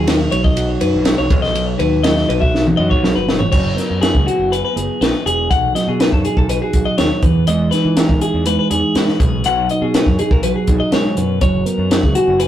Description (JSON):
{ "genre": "math rock and midwest emo", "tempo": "122 BPM", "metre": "4/4", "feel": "straight", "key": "B major", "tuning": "A4 = 441 Hz", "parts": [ { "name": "mellow electric guitar", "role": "accompaniment", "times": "0.0-12.5 s", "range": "B2 to B4", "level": "-19 LUFS", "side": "right 2 dB", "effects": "none" }, { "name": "clean electric guitar", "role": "arpeggios", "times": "0.0-12.5 s", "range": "F#4 to F#5", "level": "-19 LUFS", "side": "left 3 dB", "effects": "none" }, { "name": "growling fingered electric bass", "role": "bass", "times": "0.0-12.5 s", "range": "E1 to E3", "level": "-21 LUFS", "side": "equal", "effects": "overdrive" }, { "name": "compact cocktail drum kit", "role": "drums", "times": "0.1-12.5 s", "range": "crash cymbal, hi-hat, kick drum, ride cymbal, snare drum, toms", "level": "-17 LUFS", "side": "equal", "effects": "none" } ], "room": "moderate studio reverb, RT60 0.6 s", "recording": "rough rehearsal-room recording", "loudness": "-13 LUFS", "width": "side -11 dB against mid", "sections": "0.0-3.5 A section; 3.5-12.5 B section", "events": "drum fill 2.5-3.5", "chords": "0.0 Badd9; 1.3 B; 3.5 F#9sus4; 5.5 B13; 7.2 Emaj7; 9.2 B6; 11.4 F#9sus4" }